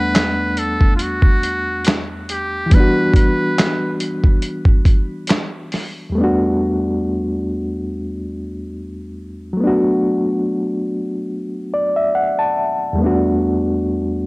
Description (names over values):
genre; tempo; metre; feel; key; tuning
lo-fi hip hop; 70 BPM; 4/4; swing 57% on 16ths; E minor; A4 = 440 Hz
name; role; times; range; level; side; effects
trumpet with metal mute; melody; 0.0-4.0 s; F4 to B4; -22 LUFS; equal; low-pass filter, cassette tape, tape echo
reed electric piano; accompaniment; 0.0-14.3 s; E2 to A5; -18 LUFS; equal; fast tremolo, cassette tape, low-pass filter
dusty soul sampler-style drum kit; drums; 0.2-5.9 s; handclaps, hi-hat, kick drum, snare drum; -14 LUFS; equal; cassette tape
room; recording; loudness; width
light reverb; home recording on cassette; -15 LUFS; side -25 dB against mid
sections
0.0-6.1 A section; 6.1-14.3 B section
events
reed electric piano fill 11.3-13.0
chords
0.0 Em11; 2.7 Em7; 6.1 Em11; 9.6 Bm7; 13.0 Em11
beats
0.14 1.00 1.85 | 2.71 3.57 4.43 5.28 | 6.14 7.00 7.86 8.71 | 9.57 10.43 11.28 12.14 | 13.00 13.86